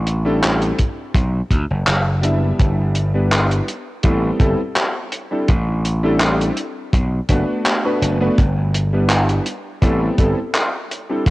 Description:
vaporwave; 83 BPM; 4/4; swing 53% on 16ths; A dorian; A4 = 442 Hz
gritty slap bass; bass; 0.0-11.3 s; F#1 to D2; -18 LUFS; equal; overdrive
cloth-damped thuddy drum kit; drums; 0.1-11.3 s; handclaps, hi-hat; -20 LUFS; equal; vintage 12-bit sampler grit, cassette tape
clear electric grand piano; accompaniment; 0.2-11.3 s; G3 to E5; -21 LUFS; equal; analog chorus, cassette tape, analog delay
kick drum; drums; 0.8-11.3 s; -16 LUFS; equal; vintage 12-bit sampler grit, cassette tape
light reverb, small room reverb; home recording on cassette; -16 LUFS; side -19 dB against mid
0.0-11.3 A section
0.0 D9sus4/A; 0.8 Bm; 2.6 G6; 3.7 Am9; 5.1 D9sus4/A; 6.6 Bm7; 8.4 G6; 9.5 Am9

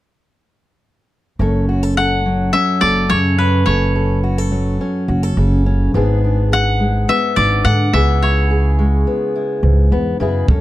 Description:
indie folk with a building arrangement; 106 BPM; 4/4; straight; F# minor; A4 = 440 Hz
fingerpicked steel-string acoustic guitar; accompaniment; 1.4-10.6 s; F#2 to A4; -19 LUFS; left 1 dB
upright bass; bass; 1.4-10.6 s; F#1 to G#2; -16 LUFS; equal
koto; melody; 2.0-9.9 s; B4 to F#5; -18 LUFS; left 1 dB
kick drum; drums; 10.5-10.6 s; -11 LUFS; equal
little or no reverb; dry, close 1970s-style studio recording; -13 LUFS; side -15 dB against mid
1.4-10.6 A section
1.4 F#m; 5.9 G#dim; 7.9 C#m7

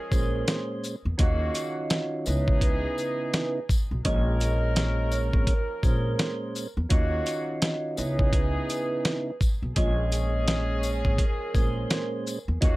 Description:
hip hop, boom-bap hip-hop; 84 BPM; 4/4; swing 60% on 16ths; Bb minor; A4 = 439 Hz
vibraphone with soft mallets; melody; 0.0-12.8 s; Bb4 to Eb5; -33 LUFS; right 2 dB; high-pass filter, low-pass filter
warm horn section; stabs; 0.0-12.8 s; Db3 to Bb4; -37 LUFS; left 3 dB; high-pass filter, low-pass filter, tape echo
percussive tonewheel organ; accompaniment; 0.1-12.8 s; Bb2 to Db5; -32 LUFS; right 2 dB; slow rotary speaker, high-pass filter, low-pass filter
upright bass; bass; 0.1-12.8 s; Ab1 to E2; -27 LUFS; equal
dusty soul sampler-style drum kit; drums; 0.1-12.8 s; hi-hat, kick drum, shaker, snare drum; -25 LUFS; equal
tambourine; percussion; 0.1-12.5 s; -43 LUFS; left 5 dB
light reverb; -24 LUFS; side -19 dB against mid
0.0-12.8 A section
0.0 Bbm9; 1.2 Ebm9; 2.3 Dbm9; 4.0 Bbm9; 6.9 Ebm9; 8.0 Dbm9; 9.8 Bbm9

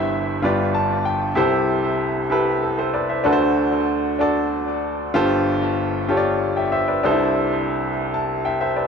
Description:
gospel; 64 BPM (dotted quarters); 6/8; straight; C major; A4 = 438 Hz
clear baby grand piano; solo; 0.0-8.9 s; G1 to A5; -18 LUFS; equal; tape echo
moderate plate reverb, RT60 3.2 s; echo-heavy mix; -18 LUFS; side -6 dB against mid
0.0-8.9 A section
grand piano fill 0.4-1.4
0.4 G7; 1.4 C6; 3.3 D7; 5.1 G9sus4; 7.0 C69

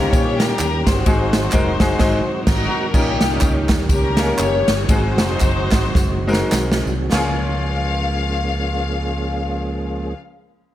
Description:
uptempo gospel; 96-128 BPM; 4/4; swing 58% on 8ths; Db major; A4 = 444 Hz
rich studio string section; melody; 0.0-10.1 s; Db4 to F5; -23 LUFS; left 3 dB
clear baby grand piano; accompaniment; 0.0-10.2 s; Db2 to C5; -23 LUFS; left 2 dB
percussive tonewheel organ; sustained chords; 0.0-10.1 s; Eb3 to Ab4; -26 LUFS; right 2 dB; fast rotary speaker, chorus vibrato
fingered electric bass; bass; 0.0-10.1 s; F1 to Bb2; -23 LUFS; equal
swinging big-band drum kit; drums; 0.1-7.3 s; crash cymbal, kick drum, ride cymbal, snare drum, splash cymbal; -19 LUFS; right 1 dB
tambourine and handclaps; percussion; 0.1-7.5 s; -30 LUFS; right 2 dB
light reverb, small room ambience; -16 LUFS; side -13 dB against mid
0.0-2.9 A section; 2.9-7.1 B section; 7.1-10.7 C section
band accent 2.0-2.9; slowing down 2.9-7.1; drum fill 6.0-7.1
0.0 Eb7/Bb; 1.1 Ab7; 2.9 Eb7/Bb; 4.9 Ab7; 7.1 Db6

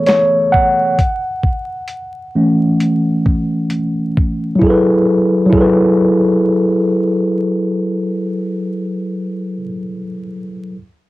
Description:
lo-fi hip hop; 66 BPM; 4/4; swing 65% on 16ths; F# minor; A4 = 442 Hz
mellow tine electric piano; accompaniment; 0.0-10.8 s; E3 to F#5; -14 LUFS; equal; medium stereo tremolo, low-pass filter
dusty soul sampler-style drum kit; drums; 0.1-5.8 s; finger snaps, hi-hat, kick drum, snare drum; -16 LUFS; equal; cassette tape
wet studio ambience, RT60 0.5 s; home recording on cassette, vinyl crackle; -13 LUFS; side -18 dB against mid
0.0-4.6 A section; 4.6-8.3 B section
tine electric piano solo 0.0-4.6
0.0 E69; 1.0 A6; 4.6 F#m11

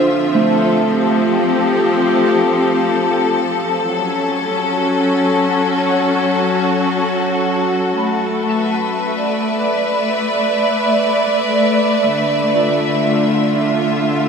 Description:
ambient; 59 BPM; 4/4; straight; A4 = 440 Hz
rich symphonic string section; sustained chords; 0.0-14.3 s; D3 to E5; -14 LUFS; left 1 dB
electric guitar at the edge of break-up; arpeggios; 0.0-14.3 s; A3 to B5; -21 LUFS; right 1 dB; wide subtle chorus, diffuse ambient delay
wet cathedral reverb, RT60 6.4 s; in a vast, echoing space; -14 LUFS; side -6 dB against mid
0.0-14.3 A section
fade-out on clean electric guitar 0.0-14.3
0.0 Fmaj7; 3.9 F#m; 8.0 Asus4; 12.0 Dmadd9

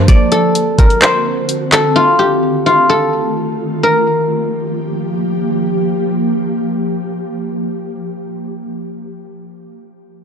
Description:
hip hop, trap; 128 BPM; 4/4; half-time; G minor; A4 = 440 Hz
guzheng; melody; 0.0-6.0 s; F4 to D5; -13 LUFS; left 1 dB; low-pass filter
ethereal airy pad; sustained chords; 0.0-8.0 s; D3 to G4; -18 LUFS; equal; ensemble chorus, built-in reverb
trap drum kit; drums; 0.1-1.8 s; handclaps, hi-hat, kick drum; -11 LUFS; equal
light reverb; dark, warm production; -12 LUFS; side -7 dB against mid
0.0-3.8 A section; 3.8-7.6 B section
0.1 D7; 2.0 F7; 3.8 Gm7

